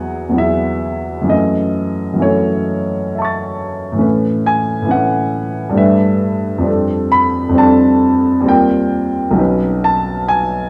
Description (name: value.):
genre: classical, impressionist solo piano.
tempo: 67 BPM.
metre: 3/4.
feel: rubato.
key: unclear.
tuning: A4 = 443 Hz.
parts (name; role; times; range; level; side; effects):
warm grand piano; solo; 0.0-10.7 s; B1 to A6; -15 LUFS; equal; none.
room: moderate recital hall reverb, RT60 1.6 s.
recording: none.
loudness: -15 LUFS.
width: mono.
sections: 0.0-10.7 A section.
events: none.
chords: 0.0 Eadd9; 1.3 F#m7; 4.0 A69; 5.8 G69; 6.7 F69; 8.5 D#69; 9.4 Badd9.